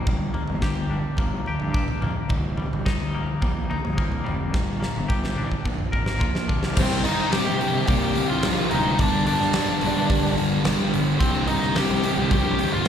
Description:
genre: quiet-loud alternative rock.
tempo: 108 BPM.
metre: 4/4.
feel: straight.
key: C minor.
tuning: A4 = 440 Hz.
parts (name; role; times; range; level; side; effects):
twangy electric guitar; arpeggios; 0.0-6.8 s; C2 to Bb4; -31 LUFS; left 4 dB; tremolo, slapback echo.
fuzz picked electric bass; bass; 0.1-12.8 s; C1 to C3; -29 LUFS; equal; overdrive.
huge arena drum kit; drums; 0.1-12.9 s; crash cymbal, hi-hat, kick drum, snare drum, toms; -25 LUFS; equal; none.
octave-fuzz lead guitar; melody; 6.8-12.9 s; C4 to G5; -25 LUFS; left 1 dB; distortion, slapback echo.
percussive tonewheel organ; sustained chords; 6.8-12.9 s; C3 to Bb4; -37 LUFS; left 1 dB; none.
thick fuzz guitar; riff; 6.8-12.9 s; C2 to G3; -25 LUFS; left 7 dB; distortion, slapback echo.
thick fuzz guitar; riff; 6.8-12.9 s; C2 to G3; -26 LUFS; right 10 dB; distortion, slapback echo.
room: studio ambience.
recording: live gig heard through the venue's PA, recital hall reverb.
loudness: -20 LUFS.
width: side -8 dB against mid.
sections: 0.0-6.8 A section; 6.8-12.9 B section.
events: drum fill 4.5-6.8.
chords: 0.1 Gm; 2.3 Cm7; 4.5 Gm; 5.7 Bb; 6.8 Cm7; 9.0 Gm7; 11.2 Cm7.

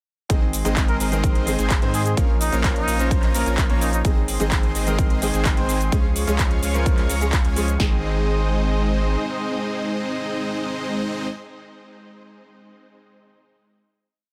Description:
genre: EDM, festival progressive house.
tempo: 128 BPM.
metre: 4/4.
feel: straight.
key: Ab major.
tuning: A4 = 440 Hz.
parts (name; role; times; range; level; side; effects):
warm concert grand piano; accompaniment; 0.3-11.3 s; Eb3 to Db5; -30 LUFS; equal; sidechain pumping.
lush unison pad; sustained chords; 0.3-11.3 s; Db4 to Db6; -34 LUFS; equal; chorus, sidechain pumping.
dense compressed supersaw; riff; 0.3-11.3 s; Ab3 to Bb5; -30 LUFS; equal; sidechain pumping, tape echo.
saturated sub bass; bass; 0.3-9.2 s; Ab1 to Ab2; -26 LUFS; equal; sidechain pumping.
big-room dance drum kit; drums; 0.3-7.9 s; kick drum, snare drum; -22 LUFS; equal; none.
big-room dance drum kit; drums; 0.3-7.8 s; handclaps, hi-hat, shaker; -30 LUFS; equal; none.
trumpet with plunger mute; melody; 0.9-4.0 s; Eb4 to Bb4; -32 LUFS; equal; tape echo.
room: little or no reverb.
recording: none.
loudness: -21 LUFS.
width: mono.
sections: 0.3-7.8 drop; 7.8-11.5 final chord.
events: drop 0.3-7.8.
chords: 0.3 Ab; 2.2 Bbm; 4.0 Ab; 5.9 Db; 7.8 Ab.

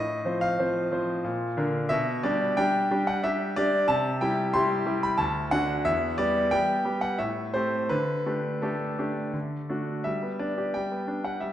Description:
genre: classical-period piano sonatina.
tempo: 83-92 BPM.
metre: 3/4.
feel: rubato.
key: G major.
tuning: A4 = 440 Hz.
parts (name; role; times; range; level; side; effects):
bright concert grand piano; solo; 0.0-11.5 s; D2 to C6; -24 LUFS; equal; none.
room: wet recital hall reverb, RT60 1.3 s.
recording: dark, warm production.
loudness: -24 LUFS.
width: side -11 dB against mid.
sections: 0.0-10.1 A section; 10.1-11.5 B section.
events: none.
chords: 0.0 F/A; 1.2 Bb; 1.9 G/B; 3.9 C; 5.2 D; 5.9 Em; 7.2 Am7; 7.9 Dsus4; 9.3 D; 10.1 G.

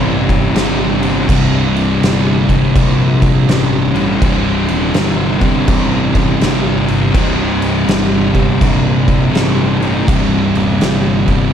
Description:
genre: stoner and doom metal.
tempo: 82 BPM.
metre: 4/4.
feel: swing 64% on 8ths.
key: C dorian.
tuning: A4 = 440 Hz.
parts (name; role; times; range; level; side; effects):
soft string machine; sustained chords; 0.0-11.5 s; C3 to Eb4; -26 LUFS; equal; none.
thick fuzz guitar; riff; 0.0-11.5 s; C2 to C3; -16 LUFS; left 8 dB; distortion.
thick fuzz guitar; riff; 0.0-11.5 s; C2 to C3; -16 LUFS; right 7 dB; distortion.
fuzz picked electric bass; bass; 0.0-11.5 s; C1 to Bb1; -20 LUFS; equal; overdrive.
oversized low-tuned drum kit; drums; 0.3-11.4 s; crash cymbal, kick drum, snare drum; -17 LUFS; equal; none.
room: small room ambience.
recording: dark, warm production.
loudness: -11 LUFS.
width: side -8 dB against mid.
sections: 0.0-11.5 A section.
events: none.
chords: 0.0 Cm.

